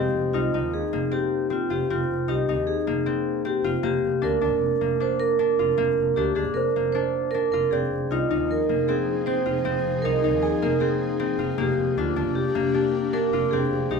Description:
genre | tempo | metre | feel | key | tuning
contemporary instrumental, chamber music in an uneven meter | 155 BPM | 5/4 | straight | F dorian | A4 = 437 Hz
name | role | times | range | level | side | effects
vibraphone with medium hard mallets | second line | 0.0-14.0 s | F4 to C5 | -24 LUFS | right 3 dB | none
concert harp | arpeggios | 0.0-14.0 s | Bb3 to F4 | -27 LUFS | left 8 dB | none
rich double bass | bass | 0.0-14.0 s | F1 to Eb2 | -30 LUFS | right 3 dB | none
celesta | texture | 0.0-0.5, 6.6-10.9 s | C5 to Ab5 | -34 LUFS | left 6 dB | none
ethereal airy pad | sustained chords | 8.4-14.0 s | Eb3 to Ab4 | -32 LUFS | left 2 dB | ensemble chorus, built-in reverb, tremolo
room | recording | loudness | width
moderate studio ambience, RT60 0.5 s | minimal, uncompressed stereo recording | -21 LUFS | side -5 dB against mid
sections
0.0-14.0 A section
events
none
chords
0.0 Fm7; 3.8 Gm/F (rootless); 7.7 Fm7; 11.6 Gm/F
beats
0.34 0.73 1.12 1.51 | 1.90 2.29 2.68 3.07 3.46 | 3.85 4.23 4.62 5.01 5.40 | 5.79 6.17 6.56 6.95 7.33 | 7.72 8.11 8.49 8.88 9.27 | 9.66 10.04 10.43 10.82 11.20 | 11.59 11.97 12.36 12.75 13.13 | 13.52 13.90

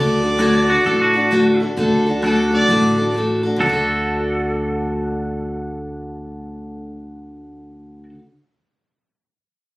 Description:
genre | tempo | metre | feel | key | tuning
honky-tonk and classic country | 131 BPM | 4/4 | swing 64% on 8ths | D major | A4 = 440 Hz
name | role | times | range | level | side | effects
clear fiddle | melody | 0.0-3.1 s | A4 to D5 | -21 LUFS | equal | none
picked steel-string acoustic guitar | accompaniment | 0.0-8.3 s | D3 to A4 | -19 LUFS | left 1 dB | none
upright bass | bass | 0.0-8.1 s | A1 to D2 | -27 LUFS | equal | none
pedal steel guitar | sustained chords | 0.4-8.0 s | F#4 to D5 | -28 LUFS | equal | none
twangy electric guitar | second line | 0.7-8.1 s | F#4 to A4 | -20 LUFS | right 1 dB | none
room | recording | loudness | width
moderate studio reverb, RT60 0.6 s | recorded on a phone in the room, club reverb | -15 LUFS | side -20 dB against mid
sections
0.0-1.8 A section; 1.8-3.6 B section; 3.6-7.3 C section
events
none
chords
0.0 D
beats
0.40 0.86 1.31 | 1.77 2.23 2.69 3.15 | 3.60 4.06 4.52 4.98 | 5.44 5.90 6.36 6.81

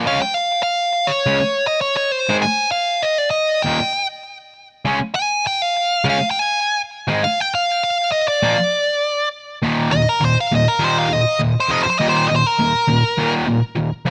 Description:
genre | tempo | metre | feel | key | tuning
punk | 201 BPM | 4/4 | straight | unclear | A4 = 440 Hz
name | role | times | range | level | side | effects
sludgy distorted guitar | riff | 0.0-14.1 s | Eb2 to Db4 | -20 LUFS | equal | overdrive
nasal lead guitar with a parked wah | melody | 0.1-13.3 s | Bb4 to Ab5 | -20 LUFS | equal | overdrive, delay
room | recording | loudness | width
light reverb | nothing above 11.0 kHz | -18 LUFS | mono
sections
0.1-9.6 A section; 9.6-14.1 B section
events
half time 0.1-9.6; lead electric guitar solo 9.6-14.1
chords
0.1 Db; 2.3 Ab5; 3.7 Eb; 4.8 Db; 7.1 Ab5; 8.4 Bb; 9.6 Eb5; 11.7 F5; 11.8 N.C.; 12.0 Eb5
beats
| 0.05 0.35 0.65 0.95 | 1.25 1.55 1.85 2.15 | 2.45 2.75 3.05 3.35 | 3.65 3.95 4.25 4.55 | 4.85 5.15 5.45 5.75 | 6.04 6.34 6.64 6.94 | 7.24 7.54 7.83 8.13 | 8.43 8.72 9.02 9.32 | 9.62 9.91 10.21 10.51 | 10.80 11.10 11.39 11.69 | 11.99 12.28 12.58 12.87 | 13.17 13.46 13.76 14.06

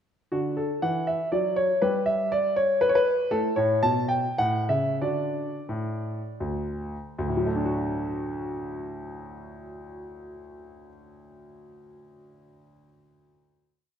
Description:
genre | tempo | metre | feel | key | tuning
classical, baroque-style suite movement for grand piano | 76-122 BPM | 3/4 | rubato | D major | A4 = 438 Hz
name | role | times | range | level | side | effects
clear concert grand piano | solo | 0.3-14.0 s | D2 to A5 | -24 LUFS | equal | none
room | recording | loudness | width
moderate scoring stage reverb, RT60 1.8 s | minimal, uncompressed stereo recording | -24 LUFS | side -8 dB against mid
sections
0.3-7.2 A section; 7.2-11.9 final chord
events
slowing down 2.6-7.2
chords
0.3 D; 1.8 N.C.; 3.3 A; 3.8 N.C.; 4.4 A; 5.0 D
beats
| 0.31 0.82 1.32 | 1.82 2.33 2.83 | 3.32 3.83 4.39 | 5.01 5.69 6.41 | 7.18 7.96 8.74 | 9.52 10.30 11.09

